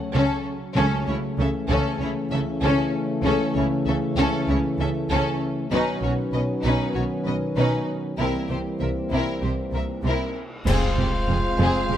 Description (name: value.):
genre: cinematic, epic orchestral film score.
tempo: 97 BPM.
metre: 4/4.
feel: straight.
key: unclear.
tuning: A4 = 440 Hz.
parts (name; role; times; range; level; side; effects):
mellow French horn section; sustained chords; 0.0-12.0 s; A3 to F4; -30 LUFS; left 5 dB; none.
mellow trombone section; sustained chords; 0.0-12.0 s; C#3 to F4; -30 LUFS; right 3 dB; none.
warm symphonic violin section; melody; 0.1-12.0 s; A4 to F5; -31 LUFS; left 4 dB; none.
warm symphonic violin section; second line; 0.1-12.0 s; C#4 to B4; -29 LUFS; left 3 dB; none.
dark symphonic viola section; accompaniment; 0.1-12.0 s; C4 to C#4; -31 LUFS; right 1 dB; none.
warm studio cello section; bass; 0.1-12.0 s; F2 to C#3; -28 LUFS; right 2 dB; none.
warm symphonic double bass section; bass; 0.1-12.0 s; F1 to C#2; -28 LUFS; right 2 dB; none.
timpani; percussion; 0.8-1.6 s; C#3; -30 LUFS; right 1 dB; none.
cymbal swell, clash cymbals and concert bass drum; percussion; 8.2-11.9 s; none; -28 LUFS; equal; none.
mellow trumpet; stabs; 10.7-12.0 s; C5; -28 LUFS; right 2 dB; none.
room: light reverb.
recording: close, detailed microphones.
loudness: -21 LUFS.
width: side -10 dB against mid.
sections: 0.0-10.7 A section; 10.7-12.0 B section.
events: band accent 10.7-11.3.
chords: 0.0 F#m/C#; 0.8 A/C#; 5.7 Badd9; 8.2 C7; 10.7 Fm.